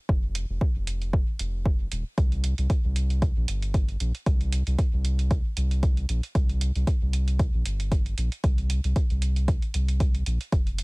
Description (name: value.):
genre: dub techno.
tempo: 115 BPM.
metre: 4/4.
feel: swing 55% on 16ths.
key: unclear.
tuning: A4 = 440 Hz.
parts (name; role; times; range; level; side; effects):
soft dub sub bass; bass; 0.1-10.8 s; Eb1 to C2; -25 LUFS; equal; sidechain pumping.
electronic kick drum; drums; 0.1-10.6 s; none; -24 LUFS; equal; none.
electronic hi-hat; drums; 0.4-10.8 s; none; -38 LUFS; right 5 dB; none.
room: little or no reverb.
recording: none.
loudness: -23 LUFS.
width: side -30 dB against mid.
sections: 0.0-10.8 A section.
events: none.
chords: none.